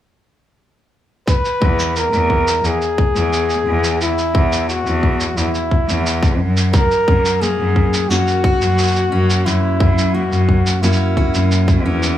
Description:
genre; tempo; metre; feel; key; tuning
folktronica; 88 BPM; 4/4; straight; E lydian; A4 = 440 Hz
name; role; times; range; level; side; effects
breathy flugelhorn; melody; 1.3-11.8 s; E4 to B4; -19 LUFS; left 1 dB; tape echo
electronic kick drum; drums; 1.3-11.8 s; none; -16 LUFS; equal; none
shaker; drums; 1.3-12.2 s; none; -24 LUFS; right 2 dB; none
bright cello; bass; 1.6-12.2 s; E2 to F#2; -17 LUFS; equal; none
fingerpicked steel-string acoustic guitar; arpeggios; 6.7-12.2 s; F#2 to F#4; -21 LUFS; left 1 dB; tape echo
room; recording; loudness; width
light reverb, studio reverb; small room ambience; -14 LUFS; side -12 dB against mid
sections
1.3-12.2 A section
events
none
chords
1.3 E; 6.7 F#7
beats
| 1.28 1.96 2.64 3.33 | 4.01 4.69 5.37 6.05 | 6.74 7.42 8.10 8.78 | 9.46 10.14 10.82 11.51

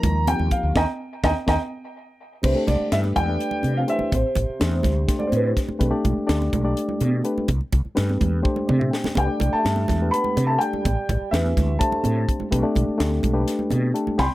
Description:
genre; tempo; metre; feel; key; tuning
electric jazz fusion; 250 BPM (eighths); 7/8; straight; C major; A4 = 443 Hz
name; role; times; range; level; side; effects
dark grand piano; melody; 0.0-5.6, 9.2-14.3 s; B4 to C6; -25 LUFS; equal; none
reed electric piano; accompaniment; 0.0-14.3 s; F3 to G5; -26 LUFS; left 2 dB; none
mellow fretless electric bass; bass; 0.0-14.3 s; A1 to C3; -23 LUFS; equal; ensemble chorus
tight funk drum kit; drums; 0.0-14.3 s; crash cymbal, hi-hat, kick drum, snare drum, toms; -25 LUFS; equal; none
congas; percussion; 0.0-14.3 s; none; -29 LUFS; right 4 dB; none
trombone with cup mute; second line; 2.4-5.6, 9.2-14.3 s; B2 to B3; -30 LUFS; right 2 dB; none
room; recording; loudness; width
light reverb; none; -19 LUFS; side -16 dB against mid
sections
0.0-2.4 A section; 2.4-14.3 B section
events
band accent 0.7-2.4, 14.2; drum fill 1.7-2.4, 8.5-9.2; reed electric piano fill 1.7-2.4, 8.5-9.2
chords
0.0 Ebmaj9; 2.4 Cmaj9; 4.1 Am7; 5.8 Gadd9/B; 7.5 Cmaj9; 10.8 Am9; 12.5 Gadd9/B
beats
0.03 0.27 0.51 | 0.75 0.99 1.23 1.47 1.71 1.95 2.19 | 2.43 2.67 2.91 3.15 3.40 3.64 3.88 | 4.12 4.36 4.60 4.84 5.08 5.32 5.56 | 5.80 6.05 6.29 6.53 6.77 7.01 7.25 | 7.49 7.73 7.97 8.21 8.45 8.69 8.93 | 9.17 9.41 9.65 9.89 10.13 10.37 10.61 | 10.85 11.09 11.32 11.56 11.80 12.04 12.28 | 12.52 12.76 13.00 13.23 13.47 13.71 13.95 | 14.19

